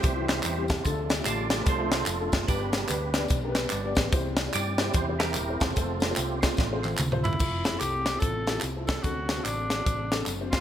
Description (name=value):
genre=uptempo gospel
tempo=147 BPM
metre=4/4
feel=swing 62% on 8ths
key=F major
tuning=A4 = 440 Hz
part: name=dark grand piano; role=accompaniment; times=0.0-10.6 s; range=G2 to D5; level=-33 LUFS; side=left 3 dB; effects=analog chorus
part: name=overdriven tonewheel organ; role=sustained chords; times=0.0-7.0 s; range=E3 to E5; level=-32 LUFS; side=right 4 dB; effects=chorus vibrato, stopped rotary speaker
part: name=hollow-body short-scale fingered electric bass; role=bass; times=0.0-10.6 s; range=Eb1 to G2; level=-33 LUFS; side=equal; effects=none
part: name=crisp fusion drum kit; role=drums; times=0.0-10.6 s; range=crash cymbal, hi-hat, kick drum, snare drum, toms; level=-27 LUFS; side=equal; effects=gated reverb
part: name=tambourine and handclaps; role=percussion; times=0.0-10.6 s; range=none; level=-36 LUFS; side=right 2 dB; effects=none
part: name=breathy tenor saxophone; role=melody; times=7.2-10.6 s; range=D4 to A4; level=-31 LUFS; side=equal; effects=none
room=moderate plate reverb, RT60 1.3 s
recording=bright 1980s-style digital production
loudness=-24 LUFS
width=side -10 dB against mid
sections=0.0-7.4 A section; 7.4-10.6 B section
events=tonewheel organ solo 0.0-7.4; drum fill 6.6-7.4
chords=0.0 C; 0.9 Dm; 2.5 G; 4.1 C; 5.8 F; 7.4 Fmaj7; 9.0 D7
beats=0.04 0.45 | 0.85 1.26 1.67 2.08 | 2.49 2.90 3.31 3.72 | 4.13 4.54 4.95 5.36 | 5.77 6.18 6.58 6.99 | 7.40 7.81 8.22 8.63 | 9.04 9.45 9.86 10.27